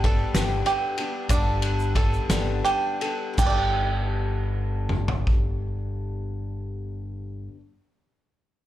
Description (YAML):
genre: indie folk with a building arrangement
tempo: 53-65 BPM (dotted quarters)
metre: 6/8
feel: straight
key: G major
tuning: A4 = 440 Hz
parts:
  - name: picked twelve-string acoustic guitar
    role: accompaniment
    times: 0.0-7.6 s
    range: G2 to A4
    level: -32 LUFS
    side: left 5 dB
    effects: slapback echo
  - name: bluegrass banjo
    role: arpeggios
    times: 0.0-7.6 s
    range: D4 to G5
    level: -27 LUFS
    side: right 5 dB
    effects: slapback echo
  - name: picked electric bass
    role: bass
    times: 0.0-7.5 s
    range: G1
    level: -27 LUFS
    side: equal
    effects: none
  - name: loose indie drum kit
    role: drums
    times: 0.0-5.4 s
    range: crash cymbal, kick drum, ride cymbal, snare drum, toms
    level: -26 LUFS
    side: equal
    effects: none
  - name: egg shaker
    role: percussion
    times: 0.4-3.7 s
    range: none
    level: -41 LUFS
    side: left 2 dB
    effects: none
room: little or no reverb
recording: live gig heard through the venue's PA, club reverb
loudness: -22 LUFS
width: side -13 dB against mid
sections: 0.0-3.4 A section; 3.4-7.9 B section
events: slowing down 0.0-3.4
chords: 0.0 Gadd9